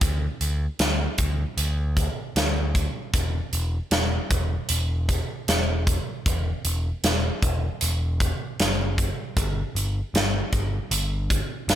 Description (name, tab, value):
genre	quiet-loud alternative rock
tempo	77 BPM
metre	4/4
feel	straight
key	E minor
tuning	A4 = 440 Hz
part	overdriven picked electric bass	bass	0.0-11.8 s	E1 to D2	-25 LUFS	equal	none
part	big rock drum kit	drums	0.0-11.8 s	hi-hat, kick drum, snare drum	-24 LUFS	equal	none
room	little or no reverb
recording	none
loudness	-22 LUFS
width	side -11 dB against mid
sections	0.0-11.8 A section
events	none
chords	none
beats	| 0.02 0.80 1.58 2.36 | 3.14 3.92 4.70 5.48 | 6.25 7.03 7.81 8.59 | 9.36 10.14 10.91 11.69